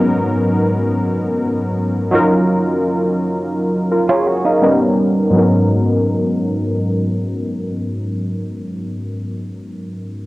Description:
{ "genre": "R&B", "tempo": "84 BPM", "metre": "4/4", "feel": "straight", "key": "G# dorian", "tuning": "A4 = 436 Hz", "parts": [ { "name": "warm analog keys", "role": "accompaniment", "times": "0.0-10.3 s", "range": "G#2 to E#5", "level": "-15 LUFS", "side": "equal", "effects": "chorus, low-pass filter, cassette tape" }, { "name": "direct-recorded clean electric guitar", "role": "arpeggios", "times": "4.1-4.8 s", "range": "D#4 to F#4", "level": "-18 LUFS", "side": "right 3 dB", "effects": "low-pass filter, cassette tape, analog delay" } ], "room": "light reverb", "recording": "home recording on cassette", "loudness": "-15 LUFS", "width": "side -18 dB against mid", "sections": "0.0-5.3 A section; 5.3-8.2 B section", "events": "none", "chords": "0.0 G#m11; 2.1 D#m9/F#; 4.6 D#7b13; 5.3 G#m11", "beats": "0.34 1.05 1.77 | 2.48 3.20 3.91 4.62 | 5.34 6.05 6.77 7.48" }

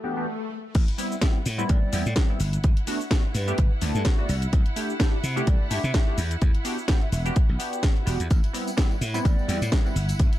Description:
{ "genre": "filtered disco house", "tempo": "127 BPM", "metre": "4/4", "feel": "swing 56% on 16ths", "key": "A dorian", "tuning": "A4 = 440 Hz", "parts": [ { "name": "funky polysynth comp", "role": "accompaniment", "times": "0.0-9.9 s", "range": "E3 to A4", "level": "-30 LUFS", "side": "equal", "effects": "chorus, phaser, sidechain pumping, low-pass filter" }, { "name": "rich symphonic violin section", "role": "sustained chords", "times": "0.0-10.4 s", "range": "E4 to B5", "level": "-38 LUFS", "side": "right 1 dB", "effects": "sidechain pumping, low-pass filter" }, { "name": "swell", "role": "sound effects", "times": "0.0-0.7 s", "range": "none", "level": "-33 LUFS", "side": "left 3 dB", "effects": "none" }, { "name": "house drum kit", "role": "drums", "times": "0.7-10.4 s", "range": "crash cymbal, hi-hat, shaker, snare drum", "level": "-31 LUFS", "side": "left 1 dB", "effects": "low-pass filter on snare, sidechain pumping on hats, low-pass filter on hats, sidechain pumping on cymbals, low-pass filter on cymbals, sidechain pumping on perc, low-pass filter on perc, low-pass filter on room" }, { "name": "slap bass", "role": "bass", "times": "0.8-10.3 s", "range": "E1 to C3", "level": "-26 LUFS", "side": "equal", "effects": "sidechain pumping, low-pass filter" }, { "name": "electronic kick drum", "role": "drums", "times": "0.8-10.3 s", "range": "none", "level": "-21 LUFS", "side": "equal", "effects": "none" }, { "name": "breathy mellow silver concert flute", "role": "melody", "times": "1.7-9.7 s", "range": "B4 to E5", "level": "-37 LUFS", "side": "equal", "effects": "sidechain pumping, low-pass filter, digital delay" }, { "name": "tambourine", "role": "percussion", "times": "8.3-10.4 s", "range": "none", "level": "-42 LUFS", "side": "left 2 dB", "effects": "sidechain pumping on perc, low-pass filter on perc" } ], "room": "little or no reverb", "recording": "dark, warm production", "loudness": "-22 LUFS", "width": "side -14 dB against mid", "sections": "0.7-10.4 A section", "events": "swell 0.0-0.7; break 0.3-0.7; drop 0.7-10.4", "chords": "0.0 Em7; 0.7 Am9; 2.4 Gmaj9; 4.3 C69; 6.2 Em7; 8.3 Am9", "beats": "0.28 | 0.75 1.22 1.69 2.17 | 2.64 3.11 3.58 4.05 | 4.53 5.00 5.47 5.95 | 6.42 6.89 7.36 7.83 | 8.31 8.78 9.25 9.72 | 10.20" }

